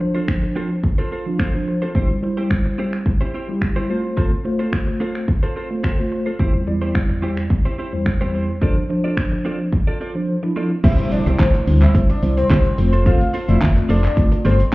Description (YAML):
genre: dance-pop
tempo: 108 BPM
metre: 4/4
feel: straight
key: C major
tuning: A4 = 445 Hz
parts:
  - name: mellow tine electric piano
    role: accompaniment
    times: 0.0-14.7 s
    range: E2 to D5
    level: -22 LUFS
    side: equal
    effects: medium stereo tremolo, sidechain pumping
  - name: direct-recorded clean electric guitar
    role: riff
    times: 0.0-14.6 s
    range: C4 to D5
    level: -28 LUFS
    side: right 2 dB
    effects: analog chorus
  - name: pop drum kit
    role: drums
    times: 0.3-14.7 s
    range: crash cymbal, finger snaps, handclaps, hi-hat, kick drum, shaker, snare drum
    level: -18 LUFS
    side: equal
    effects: none
  - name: airy dreamy lead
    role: melody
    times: 10.8-14.6 s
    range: C5 to F5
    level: -24 LUFS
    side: left 2 dB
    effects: chorus, sidechain pumping, digital delay
  - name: solid FM bass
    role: bass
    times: 10.8-14.7 s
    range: F1 to D2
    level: -16 LUFS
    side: equal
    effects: sidechain pumping
  - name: tube shaker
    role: percussion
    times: 10.8-14.7 s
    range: none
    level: -62 LUFS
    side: left 5 dB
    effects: none
  - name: impact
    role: sound effects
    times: 10.8-13.1 s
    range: none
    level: -27 LUFS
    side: equal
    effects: none
room: light reverb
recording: heard muffled through a wall, club reverb, EQ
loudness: -16 LUFS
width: side -20 dB against mid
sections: 0.0-10.8 A section; 10.8-14.7 B section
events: drop 10.8-14.7; impact 10.8-13.1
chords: 0.0 Dm7; 1.9 C; 3.9 F; 6.4 C/E; 8.6 Dm7; 10.8 C; 12.8 F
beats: 0.28 0.84 1.40 | 1.95 2.51 3.06 3.62 | 4.17 4.73 5.28 5.84 | 6.39 6.95 7.51 8.06 | 8.62 9.17 9.73 10.28 | 10.84 11.39 11.95 12.51 | 13.06 13.62 14.17 14.73